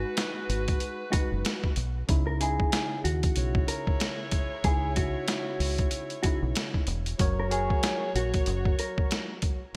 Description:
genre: hip hop, boom-bap hip-hop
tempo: 94 BPM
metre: 4/4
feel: swing 59% on 16ths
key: C# dorian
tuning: A4 = 439 Hz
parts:
  - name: mellow electric guitar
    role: melody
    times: 0.0-9.3 s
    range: F#4 to A#4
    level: -36 LUFS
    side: equal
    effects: high-pass filter, low-pass filter, delay
  - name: tine electric piano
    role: accompaniment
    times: 0.0-9.6 s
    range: C#3 to C#5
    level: -38 LUFS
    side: equal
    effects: overdrive, cassette tape, high-pass filter, low-pass filter
  - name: bright saxophone section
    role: stabs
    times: 0.0-9.4 s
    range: G#3 to C#5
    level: -40 LUFS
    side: equal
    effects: high-pass filter, low-pass filter, delay
  - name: deep dub fingered electric bass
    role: bass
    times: 0.0-8.7 s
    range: E1 to D#2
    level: -32 LUFS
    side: equal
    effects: none
  - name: boom bap sampler-style drum kit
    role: drums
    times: 0.2-9.6 s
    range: hi-hat, kick drum, snare drum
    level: -30 LUFS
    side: equal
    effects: gated reverb
room: light reverb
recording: bright 1980s-style digital production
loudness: -28 LUFS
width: mono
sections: 0.0-9.8 A section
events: none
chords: 0.0 G#m7; 2.1 C#madd9; 7.2 F#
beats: 0.17 0.81 1.45 | 2.09 2.73 3.37 4.00 | 4.64 5.28 5.92 6.56 | 7.20 7.83 8.47 9.11

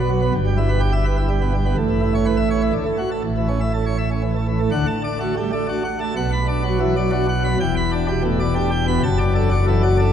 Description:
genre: classical, organ toccata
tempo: 125 BPM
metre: 3/4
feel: straight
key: D major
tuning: A4 = 444 Hz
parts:
  - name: pipe organ, plenum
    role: solo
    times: 0.0-10.1 s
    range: E1 to B5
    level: -17 LUFS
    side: equal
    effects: none
room: wet cathedral reverb, RT60 4.9 s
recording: dark, warm production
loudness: -17 LUFS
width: side -9 dB against mid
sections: 0.0-4.7 A section; 4.7-10.1 B section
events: none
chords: 0.3 Em/G; 1.8 Aadd9; 2.7 D; 3.2 A; 4.7 D; 6.2 Bm; 7.6 Em7; 9.0 D/F#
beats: | 0.35 0.82 1.30 | 1.77 2.26 2.74 | 3.23 3.73 4.22 | 4.71 5.20 5.68 | 6.16 6.63 7.12 | 7.60 8.08 8.55 | 9.03 9.51 9.99

